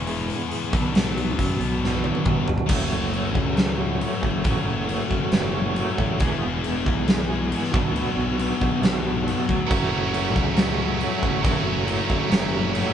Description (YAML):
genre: quiet-loud alternative rock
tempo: 137 BPM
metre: 4/4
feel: straight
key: F# minor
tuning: A4 = 441 Hz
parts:
  - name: electric guitar through a small old amp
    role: arpeggios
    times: 0.0-12.9 s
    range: E2 to G#4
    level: -28 LUFS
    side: right 4 dB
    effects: tremolo
  - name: scooped high-gain guitar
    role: riff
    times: 0.0-12.9 s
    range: B2 to G#4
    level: -26 LUFS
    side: left 6 dB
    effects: distortion
  - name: fuzz fingered electric bass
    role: bass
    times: 0.0-12.8 s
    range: E1 to F#2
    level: -28 LUFS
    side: equal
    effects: overdrive
  - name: big rock drum kit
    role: drums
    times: 0.1-12.9 s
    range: crash cymbal, hi-hat, kick drum, snare drum, toms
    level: -24 LUFS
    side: equal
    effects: none
  - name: heavy high-gain guitar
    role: riff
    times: 9.7-12.9 s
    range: F#3 to F#4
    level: -27 LUFS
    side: right 10 dB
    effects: distortion
room: moderate large studio reverb, RT60 0.8 s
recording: band playing live in one room, nothing above 10.5 kHz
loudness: -20 LUFS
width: side -9 dB against mid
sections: 0.0-2.7 A section; 2.7-12.9 B section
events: half time 0.0-2.7; drum fill 1.8-2.7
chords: 0.0 E; 0.7 Bm; 2.7 F#m; 6.2 E; 7.7 Bm; 9.7 F#m